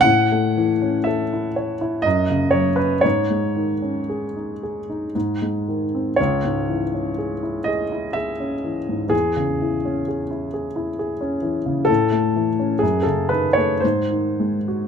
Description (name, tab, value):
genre	classical, romantic nocturne for solo piano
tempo	51-67 BPM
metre	3/4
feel	rubato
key	C# minor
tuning	A4 = 440 Hz
part	warm grand piano	solo	0.0-14.9 s	C#2 to F#5	-19 LUFS	left 1 dB	none
room	moderate studio ambience, RT60 0.5 s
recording	minimal, uncompressed stereo recording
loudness	-19 LUFS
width	side -7 dB against mid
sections	0.0-14.9 A section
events	none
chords	0.0 A; 2.1 Badd9/F#; 3.0 G#sus4; 5.1 G#; 6.2 C#m; 9.1 C#m/E; 11.9 A; 12.8 D#m7b5/F#; 13.8 G#7